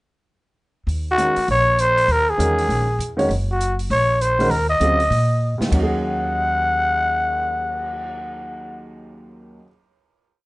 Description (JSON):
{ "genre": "modal jazz", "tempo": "199 BPM", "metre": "4/4", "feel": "swing 62% on 8ths", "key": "Eb dorian", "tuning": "A4 = 439 Hz", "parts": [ { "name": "upright bass", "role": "bass", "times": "0.9-9.6 s", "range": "Gb1 to Bb2", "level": "-23 LUFS", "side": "equal", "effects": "none" }, { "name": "open jazz drum kit", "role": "drums", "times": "0.9-8.1 s", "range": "crash cymbal, cymbal swell, hi-hat, kick drum, snare drum", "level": "-33 LUFS", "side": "right 1 dB", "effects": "none" }, { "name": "growling trumpet", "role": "melody", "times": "1.1-8.9 s", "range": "Gb4 to Gb5", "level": "-19 LUFS", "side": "equal", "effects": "none" }, { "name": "warm upright piano", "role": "accompaniment", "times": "1.2-9.7 s", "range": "Eb2 to Db5", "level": "-25 LUFS", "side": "right 1 dB", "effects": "none" } ], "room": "light reverb", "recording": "rough home demo mix, nothing above 10.5 kHz", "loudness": "-17 LUFS", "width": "side -21 dB against mid", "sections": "0.9-5.7 A section; 5.7-8.1 final chord", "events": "drum fill 5.4-5.7", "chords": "0.9 Ebm11; 5.7 Ebm7" }